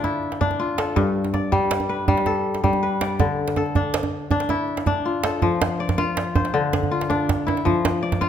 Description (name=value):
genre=west african traditional, West African string and xylophone music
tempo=108 BPM (dotted quarters)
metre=12/8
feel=straight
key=unclear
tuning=A4 = 438 Hz
part: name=kora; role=arpeggios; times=0.0-8.3 s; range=G2 to D5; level=-22 LUFS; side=left 3 dB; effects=none
part: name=djembe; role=percussion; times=0.0-8.3 s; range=none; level=-24 LUFS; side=right 4 dB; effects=none
room=wet recital hall reverb, RT60 1.4 s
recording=none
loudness=-20 LUFS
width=side -9 dB against mid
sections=0.0-5.4 A section; 5.4-8.3 B section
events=none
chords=0.0 Dm; 1.0 G; 3.2 Dm; 5.4 F; 6.5 Dm; 7.7 F5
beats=0.41 | 0.96 1.52 2.08 2.63 | 3.19 3.75 4.31 4.87 | 5.42 5.98 6.54 7.10 | 7.66 8.21